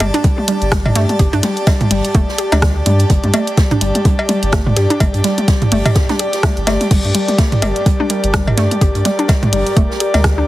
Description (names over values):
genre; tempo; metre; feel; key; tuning
minimal techno; 126 BPM; 4/4; swing 58% on 16ths; G minor; A4 = 440 Hz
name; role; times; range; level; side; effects
hollow square pluck; riff; 0.0-10.4 s; G3 to G4; -20 LUFS; equal; chorus, cassette tape, sidechain pumping, dub echo
saturated sub bass; bass; 0.0-10.4 s; F1 to G2; -18 LUFS; equal; sidechain pumping
garage drum kit; drums; 0.0-10.4 s; crash cymbal, hi-hat, rim click; -20 LUFS; equal; none
open jazz drum kit; drums; 0.0-10.4 s; hi-hat, snare drum; -30 LUFS; right 2 dB; high-pass filter on hats, high-pass filter on snare, high-pass filter on room
electronic toms and cowbell; percussion; 0.0-10.2 s; none; -19 LUFS; equal; digital delay
airy breathy pad; texture; 0.0-10.5 s; G4 to Bb5; -20 LUFS; equal; chorus, sidechain pumping
electronic kick drum; drums; 0.2-10.4 s; none; -14 LUFS; equal; none
pulsing gated texture; texture; 6.9-10.5 s; Bb4; -32 LUFS; right 2 dB; none
room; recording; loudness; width
light reverb; heavily compressed radio sound, multiband compression; -12 LUFS; side -16 dB against mid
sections
0.0-10.5 A section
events
none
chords
0.0 Gm